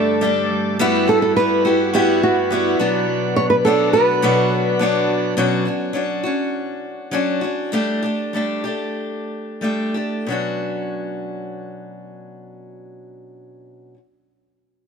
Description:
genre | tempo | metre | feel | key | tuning
acoustic pop | 88-105 BPM | 4/4 | straight | B minor | A4 = 439 Hz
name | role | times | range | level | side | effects
nylon-string guitar | melody | 0.0-5.0 s | F#4 to D5 | -18 LUFS | right 2 dB | none
picked steel-string acoustic guitar | accompaniment | 0.0-14.0 s | B2 to A4 | -20 LUFS | left 2 dB | none
bright tonewheel organ | sustained chords | 0.0-5.4 s | G2 to F#5 | -27 LUFS | equal | overdrive, slow rotary speaker
direct-recorded clean electric guitar | arpeggios | 0.0-5.9 s | F#3 to F#4 | -26 LUFS | right 8 dB | none
room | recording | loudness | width
moderate plate reverb, RT60 3.7 s | none | -17 LUFS | side -6 dB against mid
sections
0.0-5.4 A section; 5.4-10.3 B section; 10.3-13.0 C section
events
slowing down 5.4-10.3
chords
0.0 Gsus2; 0.8 Emadd9/G; 2.8 Bm; 5.4 Bmadd9; 7.7 Gsus2; 10.3 Bmadd9

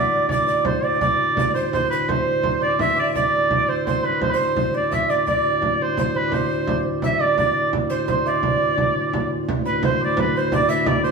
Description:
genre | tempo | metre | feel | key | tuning
medieval dance | 170 BPM | 3/4 | straight | D mixolydian | A4 = 440 Hz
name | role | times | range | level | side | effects
clear shawm | melody | 0.0-11.1 s | B4 to E5 | -22 LUFS | right 2 dB | none
breathy mellow tenor recorder | second line | 0.0-11.1 s | B4 to E5 | -26 LUFS | right 1 dB | none
hammered dulcimer | second line | 0.0-11.1 s | B4 to F#5 | -28 LUFS | right 5 dB | none
pedal harmonium | drone | 0.0-11.1 s | D2 to A2 | -26 LUFS | left 1 dB | none
frame drum | percussion | 0.1-11.0 s | none | -26 LUFS | right 2 dB | none
room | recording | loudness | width
wet stone room reverb, RT60 1.1 s | band playing live in one room, small room reverb | -18 LUFS | side -4 dB against mid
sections
0.0-1.0 A section; 1.0-9.5 B section; 9.5-11.1 C section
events
speeding up 0.0-11.1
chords
none

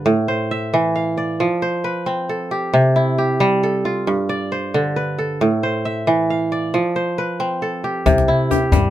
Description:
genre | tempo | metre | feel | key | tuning
west african traditional, West African string and xylophone music | 90 BPM (dotted quarters) | 12/8 | straight | C major | A4 = 441 Hz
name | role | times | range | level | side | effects
kora | arpeggios | 0.0-8.9 s | G2 to F5 | -17 LUFS | right 1 dB | none
upright bass | bass | 8.1-8.9 s | C2 to G2 | -18 LUFS | left 1 dB | none
djembe | percussion | 8.1-8.8 s | none | -19 LUFS | left 6 dB | none
room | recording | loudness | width
little or no reverb | close, detailed microphones | -17 LUFS | side -12 dB against mid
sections
0.0-8.1 A section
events
none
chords
0.1 Am; 1.4 F; 2.7 C; 4.1 G; 5.4 Am; 6.7 F; 8.1 C

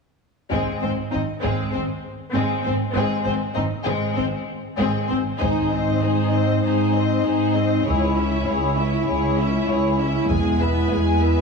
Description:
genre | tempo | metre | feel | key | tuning
cinematic, epic orchestral film score | 98 BPM | 4/4 | straight | unclear | A4 = 440 Hz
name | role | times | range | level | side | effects
warm symphonic violin section | melody | 0.5-11.4 s | Ab4 to G#5 | -29 LUFS | left 2 dB | none
warm chamber violin section | second line | 0.5-11.4 s | Ab3 to C5 | -27 LUFS | left 4 dB | none
rich symphonic viola section | accompaniment | 0.5-11.4 s | G#3 to Fb4 | -27 LUFS | equal | none
rich symphonic double bass section | bass | 0.5-10.8 s | E1 to Db2 | -28 LUFS | right 3 dB | none
warm symphonic cello section | bass | 0.5-11.4 s | Db2 to Ab2 | -25 LUFS | right 2 dB | none
taiko ensemble | drums | 0.5-1.7, 5.4-6.6, 10.3-11.4 s | none | -31 LUFS | left 1 dB | none
mellow French horn section | sustained chords | 5.4-11.4 s | Ab3 to Fb4 | -23 LUFS | left 4 dB | none
room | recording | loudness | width
moderate scoring stage reverb, RT60 1.7 s | heavily compressed radio sound, small room ambience | -19 LUFS | side -4 dB against mid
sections
0.5-5.4 A section; 5.4-11.4 B section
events
build-up 5.4-11.4; band accent 5.4-6.0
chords
0.5 Ab; 7.9 Dbm; 10.3 E

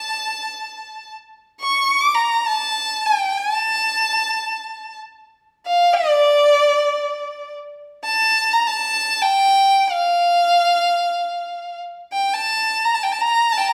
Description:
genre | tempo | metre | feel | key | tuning
Arabic maqam ensemble | free time | none | none | unclear | A4 = 441 Hz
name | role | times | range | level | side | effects
clear violin | solo | 0.0-13.7 s | D5 to D6 | -19 LUFS | equal | none
room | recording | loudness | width
moderate recital hall reverb, RT60 1.4 s | none | -18 LUFS | mono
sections
0.0-7.7 A section; 7.7-13.7 A section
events
none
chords
none

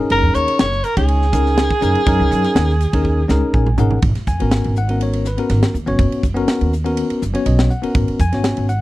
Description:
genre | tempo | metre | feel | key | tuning
electric jazz fusion | 122 BPM | 4/4 | straight | G# minor | A4 = 439 Hz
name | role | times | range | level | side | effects
bell-like tine electric piano | accompaniment | 0.0-8.8 s | B3 to G#5 | -20 LUFS | left 2 dB | fast stereo tremolo
warm soprano saxophone | melody | 0.1-3.5 s | G#4 to C#5 | -19 LUFS | right 1 dB | none
upright bass | bass | 0.1-8.8 s | F#1 to F#2 | -18 LUFS | right 1 dB | none
crisp fusion drum kit | drums | 0.1-8.8 s | hi-hat, kick drum, ride cymbal, snare drum, toms | -20 LUFS | right 1 dB | none
room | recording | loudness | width
little or no reverb | dry, close 1970s-style studio recording | -14 LUFS | side -17 dB against mid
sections
0.0-4.0 A section; 4.0-8.8 B section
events
drum fill 3.0-4.0; tine electric piano fill 3.3-4.0, 7.2-8.0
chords
0.0 F#69; 4.0 G#m11

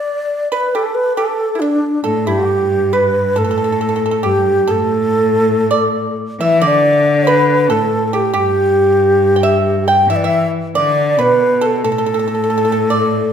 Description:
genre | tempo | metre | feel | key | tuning
chinese traditional, Chinese chamber ensemble | 69 BPM | 2/4 | straight | unclear | A4 = 440 Hz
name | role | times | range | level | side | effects
breathy mellow xiao | melody | 0.0-13.3 s | D4 to G5 | -14 LUFS | equal | none
pipa | second line | 0.0-13.3 s | D4 to G5 | -19 LUFS | right 2 dB | none
rich cello | second line | 2.0-13.3 s | G2 to E3 | -18 LUFS | left 2 dB | none
room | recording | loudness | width
wet recital hall reverb, RT60 1.5 s | minimal, uncompressed stereo recording | -12 LUFS | side -8 dB against mid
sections
0.0-3.4 A section; 3.4-13.3 B section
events
none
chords
none

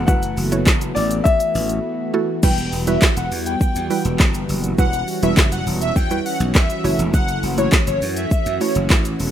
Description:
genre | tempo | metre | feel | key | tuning
dance-pop | 102 BPM | 4/4 | straight | E dorian | A4 = 438 Hz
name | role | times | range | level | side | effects
clear concert grand piano | melody | 0.0-2.1 s | D5 to F#5 | -22 LUFS | left 4 dB | tape echo
soft supersaw | sustained chords | 0.0-9.3 s | E3 to F#4 | -26 LUFS | equal | sidechain pumping
slap bass | bass | 0.0-9.3 s | E1 to F#2 | -23 LUFS | equal | sidechain pumping
mallet-like synth pluck | accompaniment | 0.1-9.2 s | G3 to C#5 | -24 LUFS | right 5 dB | chorus, sidechain pumping
deep house drum kit | drums | 0.1-9.3 s | crash cymbal, handclaps, hi-hat, kick drum, shaker, snare drum | -18 LUFS | equal | none
egg shaker | percussion | 0.1-9.2 s | none | -43 LUFS | left 5 dB | none
airy dreamy lead | melody | 2.4-8.7 s | C#5 to G5 | -24 LUFS | left 1 dB | chorus
room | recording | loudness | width
little or no reverb | rough home demo mix | -16 LUFS | side -10 dB against mid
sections
0.0-2.4 A section; 2.4-9.3 B section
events
break 1.8-2.4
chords
0.0 F#m7; 2.4 Emadd9; 6.8 F#m7

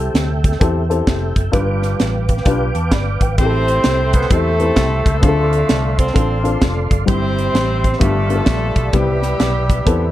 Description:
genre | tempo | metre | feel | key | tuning
uptempo gospel | 130 BPM | 4/4 | swing 63% on 8ths | C major | A4 = 438 Hz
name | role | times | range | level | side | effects
dark baby grand piano | accompaniment | 0.0-10.0 s | G2 to B5 | -21 LUFS | left 3 dB | none
mellow tonewheel organ | sustained chords | 0.0-10.1 s | G4 to D6 | -25 LUFS | right 3 dB | fast rotary speaker, chorus vibrato
fingered electric bass | bass | 0.0-10.1 s | F1 to E2 | -19 LUFS | equal | none
crisp fusion drum kit | drums | 0.1-10.0 s | hi-hat, kick drum, snare drum | -18 LUFS | equal | none
edgy saxophone section | melody | 3.4-10.1 s | B3 to C5 | -24 LUFS | left 3 dB | none
mellow tenor saxophone | melody | 3.4-10.1 s | G3 to C4 | -22 LUFS | right 2 dB | none
room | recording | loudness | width
light reverb, studio reverb | dark, warm production | -14 LUFS | side -14 dB against mid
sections
0.0-10.1 A section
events
none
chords
0.0 C6; 1.5 G7; 3.4 Am7; 5.2 Dm7; 7.1 C/G; 8.0 G7; 8.9 Cmaj7

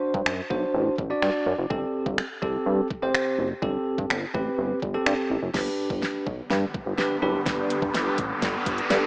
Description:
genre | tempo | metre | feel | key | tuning
dance-pop | 125 BPM | 4/4 | straight | G major | A4 = 440 Hz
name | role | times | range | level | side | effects
bell-like tine electric piano | accompaniment | 0.0-9.1 s | C4 to D5 | -26 LUFS | equal | sidechain pumping
chorused synth bass | bass | 0.1-9.0 s | F#1 to G2 | -27 LUFS | equal | sidechain pumping
smooth R&B drum kit | drums | 0.1-9.0 s | crash cymbal, finger snaps, hi-hat, kick drum, snare drum | -28 LUFS | equal | none
shimmering ambient pad | sustained chords | 6.4-9.1 s | D3 to B3 | -31 LUFS | equal | chorus, built-in reverb, phaser, sidechain pumping
riser | sound effects | 6.7-9.1 s | none | -31 LUFS | equal | none
room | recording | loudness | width
moderate lush hall reverb, RT60 1.6 s, digital ambience | worn, warbling old tape, cassette tape, warbly pitch drift, small speaker sound | -23 LUFS | side -29 dB against mid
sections
0.0-5.5 A section; 5.5-9.1 B section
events
build-up 5.5-9.1; drum fill 5.5-9.1; riser 6.7-9.1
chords
0.0 D7; 1.7 Am7; 5.5 G

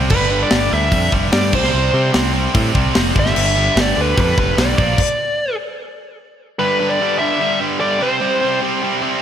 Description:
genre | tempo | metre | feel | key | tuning
hard rock | 148 BPM | 4/4 | straight | G mixolydian | A4 = 440 Hz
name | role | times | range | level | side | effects
tight distorted guitar | riff | 0.0-9.2 s | G2 to C4 | -19 LUFS | right 1 dB | distortion, slapback echo
modern bright picked electric bass | bass | 0.0-4.9 s | F1 to C3 | -19 LUFS | equal | none
dark smooth lead guitar | melody | 0.1-8.6 s | B4 to E5 | -19 LUFS | equal | overdrive
tight metal drum kit | drums | 0.1-5.1 s | crash cymbal, hi-hat, kick drum, snare drum | -18 LUFS | equal | none
room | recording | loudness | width
moderate lush hall reverb, RT60 1.8 s, small room ambience | big arena sound | -14 LUFS | side -9 dB against mid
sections
0.0-6.6 A section; 6.6-9.2 A section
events
stop 5.0-6.6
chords
0.1 G5; 1.5 C5; 3.2 G; 4.8 Bb; 5.8 N.C.; 6.6 G5; 8.0 C5

